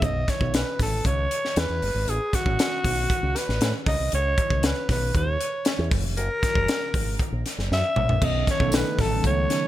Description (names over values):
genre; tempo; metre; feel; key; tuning
polished 1980s jazz-funk pop; 117 BPM; 4/4; straight; unclear; A4 = 440 Hz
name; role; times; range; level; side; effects
growling alto saxophone; melody; 0.0-9.7 s; F#4 to E5; -26 LUFS; equal; none
mellow tine electric piano; accompaniment; 0.0, 8.2-9.7 s; C#3 to A4; -30 LUFS; equal; medium stereo tremolo, lush chorus
fingered electric bass with an envelope filter; bass; 0.0-9.5 s; E#1 to A2; -26 LUFS; equal; none
crisp fusion drum kit; drums; 0.0-9.6 s; crash cymbal, hi-hat, kick drum, snare drum, toms; -25 LUFS; equal; none
hollow soft pad; sustained chords; 8.2-9.7 s; C#3 to D#4; -34 LUFS; right 3 dB; chorus
tambourine; percussion; 8.7-8.8 s; none; -37 LUFS; right 8 dB; none
room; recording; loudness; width
light reverb, small room ambience; bright 1980s-style digital production; -21 LUFS; side -13 dB against mid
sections
0.0-9.7 A section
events
drum fill 7.7-8.2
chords
0.0 Bsus2; 1.6 E; 2.1 Asus2; 3.9 C#7sus2; 5.9 F#7; 8.2 B9